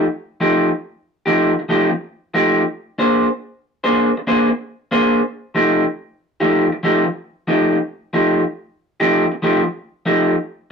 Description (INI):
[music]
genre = blues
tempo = 93 BPM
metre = 4/4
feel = swing 66% on 8ths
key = F mixolydian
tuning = A4 = 441 Hz
[part]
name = electric guitar through a small old amp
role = solo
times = 0.0-10.3 s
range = F3 to C5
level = -15 LUFS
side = equal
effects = none
[sound]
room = moderate studio reverb, RT60 0.6 s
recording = rough rehearsal-room recording, warm saturation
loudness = -16 LUFS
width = side -6 dB against mid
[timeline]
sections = 0.4-10.7 A section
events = none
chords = 0.4 F9; 3.0 Bb9; 5.6 F9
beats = | 0.42 1.06 1.71 2.35 | 3.00 3.64 4.29 4.93 | 5.57 6.22 6.86 7.50 | 8.15 8.79 9.44 10.08